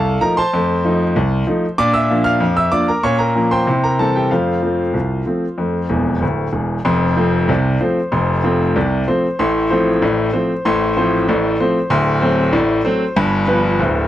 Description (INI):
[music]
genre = ragtime piano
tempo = 95 BPM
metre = 2/4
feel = straight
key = F major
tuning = A4 = 441 Hz
[part]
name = bright grand piano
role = solo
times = 0.0-14.1 s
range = D1 to F6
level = -14 LUFS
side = equal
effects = none
[sound]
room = light reverb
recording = dark, warm production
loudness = -14 LUFS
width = side -13 dB against mid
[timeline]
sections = 0.0-6.9 A section; 6.9-14.1 B section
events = grand piano fill 5.9-6.9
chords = 0.0 F7; 1.8 Bb; 3.0 Bbm; 3.7 C; 4.3 F; 9.4 F/A; 11.9 D7; 13.2 G7